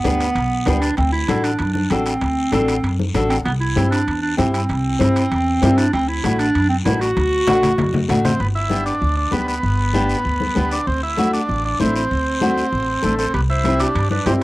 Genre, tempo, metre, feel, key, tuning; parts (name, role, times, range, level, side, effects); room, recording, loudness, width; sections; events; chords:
latin, cumbia; 194 BPM; 4/4; straight; G major; A4 = 441 Hz
clear clarinet; second line; 0.0-8.2, 13.2-14.3 s; B3 to C5; -20 LUFS; right 1 dB; cassette tape, plate reverb
flamenco guitar; accompaniment; 0.0-14.4 s; A3 to B4; -21 LUFS; left 1 dB; cassette tape, plate reverb
upright bass; bass; 0.0-14.4 s; G1 to G2; -22 LUFS; equal
congas; percussion; 0.0-14.4 s; -24 LUFS; left 3 dB
guiro; percussion; 0.0-14.4 s; -33 LUFS; left 4 dB
timbales; percussion; 0.1-8.4, 13.3-14.4 s; -30 LUFS; right 3 dB
combo organ; melody; 8.2-14.3 s; B3 to E4; -21 LUFS; right 1 dB; cassette tape, plate reverb
moderate booth ambience, RT60 0.2 s; home recording on cassette; -16 LUFS; side -19 dB against mid
0.0-8.4 A section; 8.4-14.4 B section
clarinet solo 0.0-8.4; drum fill 7.2-8.4
0.0 G; 1.0 D7; 3.5 C; 5.9 D; 8.4 G; 10.9 D7; 13.3 C